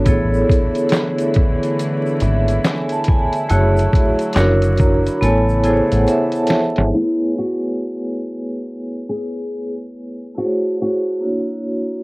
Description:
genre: lo-fi hip hop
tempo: 70 BPM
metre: 4/4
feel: swing 64% on 16ths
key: A major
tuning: A4 = 439 Hz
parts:
  - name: nylon-string guitar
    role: melody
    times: 0.0, 6.9-12.0 s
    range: E4 to G#4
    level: -22 LUFS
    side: equal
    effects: low-pass filter
  - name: vibraphone with medium hard mallets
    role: accompaniment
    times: 0.0-12.0 s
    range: A3 to B5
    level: -19 LUFS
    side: right 1 dB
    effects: low-pass filter, cassette tape
  - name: warm studio string section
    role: sustained chords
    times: 0.0-6.9 s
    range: C#3 to E4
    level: -26 LUFS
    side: equal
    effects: low-pass filter, cassette tape
  - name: deep dub fingered electric bass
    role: bass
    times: 0.0-6.9 s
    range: F#1 to A1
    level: -17 LUFS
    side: equal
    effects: none
  - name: trip hop sampler-style drum kit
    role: drums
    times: 0.1-6.9 s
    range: handclaps, hi-hat, kick drum, snare drum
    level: -17 LUFS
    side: equal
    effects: cassette tape
  - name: egg shaker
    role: percussion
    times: 0.1-6.9 s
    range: none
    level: -46 LUFS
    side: left 3 dB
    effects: none
room: light reverb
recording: home recording on cassette, vinyl crackle, low-pass filter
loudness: -15 LUFS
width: side -25 dB against mid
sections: 0.0-6.9 A section; 6.9-12.0 B section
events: vibraphone fill 4.4-6.9; drum fill 5.2-6.9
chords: 0.1 Amaj7; 3.5 F#m7; 4.4 F#7b13; 5.2 Amaj7; 10.4 F#m7; 11.2 F#7b13

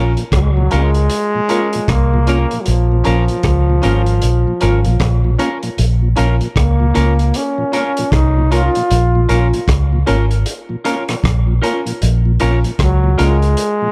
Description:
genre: roots reggae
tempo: 77 BPM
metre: 4/4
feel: swing 61% on 16ths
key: Bb minor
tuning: A4 = 442 Hz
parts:
  - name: clean electric guitar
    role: accompaniment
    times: 0.0-13.4 s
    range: F4 to Db5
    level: -28 LUFS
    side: equal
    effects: subtle chorus, tape echo
  - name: mellow tonewheel organ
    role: accompaniment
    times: 0.0-13.9 s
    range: Bb2 to F4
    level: -28 LUFS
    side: equal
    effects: slow rotary speaker
  - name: clear upright piano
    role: stabs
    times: 0.0-13.5 s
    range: Db4 to Bb4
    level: -26 LUFS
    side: equal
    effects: none
  - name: vintage muted fingered electric bass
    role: bass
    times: 0.0-13.5 s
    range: Ab1 to Db2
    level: -16 LUFS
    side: equal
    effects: none
  - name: crunchy breakbeat drum kit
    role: drums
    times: 0.2-13.8 s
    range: hi-hat, kick drum, rim click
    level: -23 LUFS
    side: equal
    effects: none
  - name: breathy trombone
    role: melody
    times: 0.4-13.9 s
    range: F3 to F4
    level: -21 LUFS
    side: equal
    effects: tape echo
room: light reverb, small room ambience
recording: dark, warm production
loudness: -15 LUFS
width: mono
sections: 0.0-13.9 A section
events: none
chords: 0.0 Bbm

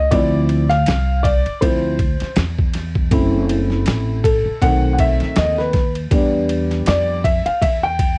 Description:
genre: hip hop, jazz-hop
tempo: 80 BPM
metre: 4/4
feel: swing 57% on 16ths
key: unclear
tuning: A4 = 439 Hz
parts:
  - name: dark upright piano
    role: accompaniment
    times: 0.0-8.2 s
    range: D#3 to G5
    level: -18 LUFS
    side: left 1 dB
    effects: cassette tape
  - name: upright bass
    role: bass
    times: 0.0-8.2 s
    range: F#1 to F2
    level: -19 LUFS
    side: equal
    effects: none
  - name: boom bap sampler-style drum kit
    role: drums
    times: 0.1-8.2 s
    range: hi-hat, kick drum, ride cymbal, snare drum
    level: -19 LUFS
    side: equal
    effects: cassette tape
room: light reverb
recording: home recording on cassette, vinyl crackle, nothing above 10.5 kHz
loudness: -14 LUFS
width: side -28 dB against mid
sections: 0.0-8.2 A section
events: upright piano solo 0.0-8.2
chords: 0.1 Dm7; 3.1 F#m7b5; 4.6 B7b9; 6.1 Em7

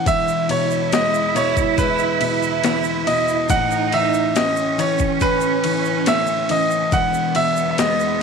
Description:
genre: pop ballad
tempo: 70 BPM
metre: 4/4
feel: straight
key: E major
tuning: A4 = 440 Hz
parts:
  - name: bright grand piano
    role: melody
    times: 0.0-8.2 s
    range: B4 to F#5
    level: -20 LUFS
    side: right 2 dB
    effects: slapback echo
  - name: felt-muted upright piano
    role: accompaniment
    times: 0.0-8.2 s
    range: E1 to C#4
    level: -24 LUFS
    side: left 11 dB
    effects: none
  - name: clear symphonic cello section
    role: second line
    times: 0.1-8.2 s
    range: B3 to E4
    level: -23 LUFS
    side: right 13 dB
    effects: none
  - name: breakbeat sampler-style drum kit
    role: drums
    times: 0.1-8.0 s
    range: kick drum, ride cymbal, snare drum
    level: -25 LUFS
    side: left 3 dB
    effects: none
  - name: egg shaker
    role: percussion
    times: 0.1-8.2 s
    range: none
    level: -35 LUFS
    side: right 17 dB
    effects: none
room: light reverb, studio ambience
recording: 1960s-style stereo with parts hard left and right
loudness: -16 LUFS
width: side -5 dB against mid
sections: 0.0-8.2 A section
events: none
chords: 0.1 E; 3.5 Aadd9; 6.9 Emaj7

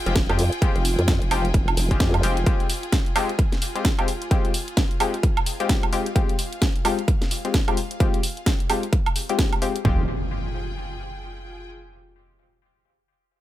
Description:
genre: bass house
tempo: 130 BPM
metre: 4/4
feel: swing 60% on 16ths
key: F minor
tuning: A4 = 440 Hz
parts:
  - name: clear symphonic string section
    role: texture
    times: 0.0-11.7 s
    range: F4 to G5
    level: -35 LUFS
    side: right 1 dB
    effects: sidechain pumping
  - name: band-passed chord stab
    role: stabs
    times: 0.1-10.0 s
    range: Ab3 to G4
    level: -28 LUFS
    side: left 5 dB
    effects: chorus, sidechain pumping, tape echo
  - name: vowel-sweep wobble bass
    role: bass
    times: 0.1-2.5, 9.8-10.1 s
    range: F1 to F2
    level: -23 LUFS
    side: equal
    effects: chorus, tube saturation, sidechain pumping
  - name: garage drum kit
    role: drums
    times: 0.1-9.8 s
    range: hi-hat, snare drum, woodblock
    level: -26 LUFS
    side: right 2 dB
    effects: none
  - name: big-room dance drum kit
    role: drums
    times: 0.2-10.0 s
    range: kick drum, toms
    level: -22 LUFS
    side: equal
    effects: overdrive
  - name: impact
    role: sound effects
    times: 9.8-11.7 s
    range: none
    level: -30 LUFS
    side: equal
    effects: none
room: little or no reverb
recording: none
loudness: -20 LUFS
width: side -14 dB against mid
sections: 0.0-9.8 A section; 9.8-11.7 B section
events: fade-out on string section 0.0-9.8; filter sweep on synth stab 0.0-9.8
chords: 0.0 Fmadd9

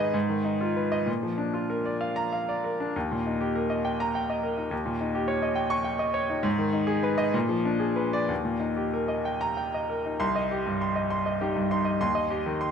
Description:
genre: classical, virtuoso piano study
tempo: 61-71 BPM (dotted quarters)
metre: 6/8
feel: rubato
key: Eb major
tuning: A4 = 439 Hz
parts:
  - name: bright baby grand piano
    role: solo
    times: 0.0-12.7 s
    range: C2 to Db6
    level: -25 LUFS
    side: equal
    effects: none
room: moderate concert hall reverb, RT60 2.0 s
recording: close, detailed microphones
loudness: -25 LUFS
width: side -7 dB against mid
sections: 0.0-10.2 A section; 10.2-12.7 B section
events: none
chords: 0.1 Fm7b5/Ab; 1.1 Bb; 2.9 Eb; 4.7 Eb7; 6.4 Abm; 7.3 Bb7b9; 8.3 Eb; 10.2 Cm; 12.0 Cm/Eb

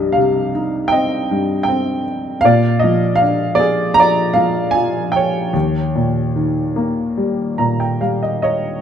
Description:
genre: classical, lyrical solo piano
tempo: 70-80 BPM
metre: 4/4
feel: rubato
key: unclear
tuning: A4 = 440 Hz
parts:
  - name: warm baby grand piano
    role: solo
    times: 0.0-8.8 s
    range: C2 to Bb5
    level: -14 LUFS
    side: equal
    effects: none
room: moderate studio reverb, RT60 0.6 s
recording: dark, warm production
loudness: -14 LUFS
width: side -8 dB against mid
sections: 0.0-8.8 A section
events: grand piano fill 7.2-8.8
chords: 0.0 Cmadd11; 2.4 Bb7; 5.5 Eb7

